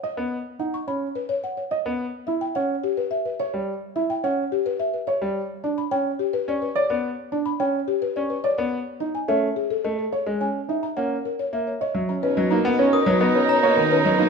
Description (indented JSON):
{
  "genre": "classical, minimalist pattern music",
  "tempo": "107 BPM",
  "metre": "3/4",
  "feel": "straight",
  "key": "unclear",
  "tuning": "A4 = 440 Hz",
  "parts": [
    { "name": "buzzing marimba with soft mallets", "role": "melody", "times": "0.0-14.3 s", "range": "G4 to C#6", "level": "-26 LUFS", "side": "left 5 dB", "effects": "none" },
    { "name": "warm baby grand piano", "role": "arpeggios", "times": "0.0-14.3 s", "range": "C#4 to D#5", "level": "-25 LUFS", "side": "right 4 dB", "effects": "none" },
    { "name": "bright grand piano", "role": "accompaniment", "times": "0.2-14.3 s", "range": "D#3 to C#4", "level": "-26 LUFS", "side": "equal", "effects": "none" },
    { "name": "clear clarinet", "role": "second line", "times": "12.2-14.3 s", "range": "D#4", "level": "-26 LUFS", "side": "right 7 dB", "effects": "none" },
    { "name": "warm symphonic string section", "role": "sustained chords", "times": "12.2-14.3 s", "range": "D#4 to A#4", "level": "-28 LUFS", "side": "right 2 dB", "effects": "none" },
    { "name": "mellow bassoon", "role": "bass", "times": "12.2-14.3 s", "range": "B2", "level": "-25 LUFS", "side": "left 2 dB", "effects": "none" },
    { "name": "glockenspiel with rubber mallets", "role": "arpeggios", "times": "12.9-13.7 s", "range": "A#5 to D#6", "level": "-26 LUFS", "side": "left 3 dB", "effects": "none" }
  ],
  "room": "moderate large studio reverb, RT60 1.4 s",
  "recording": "minimal, uncompressed stereo recording",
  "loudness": "-21 LUFS",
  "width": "side -5 dB against mid",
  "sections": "0.0-12.2 A section; 12.2-14.3 B section",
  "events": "none",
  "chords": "0.0 B; 2.1 Em; 5.5 G; 8.9 Amaj7; 10.5 F#7; 12.2 Bmaj7"
}